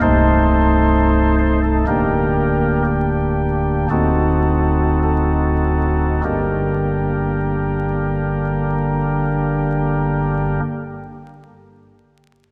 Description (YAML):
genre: classical, chorale-style piece for pipe organ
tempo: 48-67 BPM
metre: 4/4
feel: rubato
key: G minor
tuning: A4 = 442 Hz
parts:
  - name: pipe organ, flutes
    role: solo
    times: 0.0-10.6 s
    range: C1 to C5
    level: -18 LUFS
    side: equal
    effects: none
room: wet church reverb, RT60 2.6 s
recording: vinyl crackle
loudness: -18 LUFS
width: mono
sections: 0.0-6.2 A section; 6.2-11.2 B section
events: slowing down 0.0-6.2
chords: 0.0 Adim/C; 1.9 Gm/D; 3.9 D7b9; 6.2 Gm